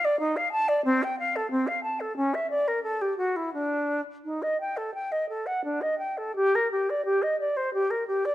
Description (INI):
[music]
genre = classical, baroque-style fantasia for unaccompanied flute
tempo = 82-92 BPM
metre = 4/4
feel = rubato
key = G minor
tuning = A4 = 439 Hz
[part]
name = silver concert flute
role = solo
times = 0.0-8.3 s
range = C4 to A5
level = -25 LUFS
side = equal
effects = none
[sound]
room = light reverb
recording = dark, warm production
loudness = -25 LUFS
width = side -14 dB against mid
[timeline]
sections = 0.0-6.4 A section; 6.4-8.3 B section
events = none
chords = none